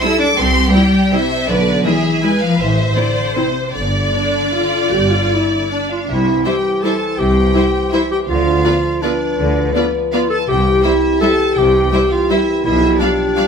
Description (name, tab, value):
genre	classical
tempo	144-180 BPM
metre	3/4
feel	rubato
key	C major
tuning	A4 = 435 Hz
part	rich symphonic violin section	melody	0.0-13.5 s	C5 to E6	-22 LUFS	equal	none
part	clear symphonic violin section	second line	0.0-13.5 s	G4 to F5	-22 LUFS	left 1 dB	none
part	warm symphonic viola section	accompaniment	0.0-13.4 s	G3 to G4	-20 LUFS	equal	none
part	warm symphonic cello section	bass	0.0-12.9 s	B2 to E4	-20 LUFS	equal	none
part	rich symphonic double bass section	bass	0.4-12.9 s	G1 to D2	-20 LUFS	right 1 dB	none
part	warm clarinet	second line	5.7-13.5 s	D4 to A4	-17 LUFS	equal	none
part	mellow French horn section	sustained chords	6.1-13.5 s	E3 to C5	-20 LUFS	left 2 dB	none
room	moderate stone room reverb, RT60 1.0 s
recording	minimal, uncompressed stereo recording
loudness	-13 LUFS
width	side -6 dB against mid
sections	0.0-6.1 A section; 6.1-13.5 B section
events	none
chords	0.0 C; 1.5 E7/B; 2.6 Am; 3.7 G5; 6.1 C; 8.3 Bdim/D; 10.5 C; 12.6 G7/B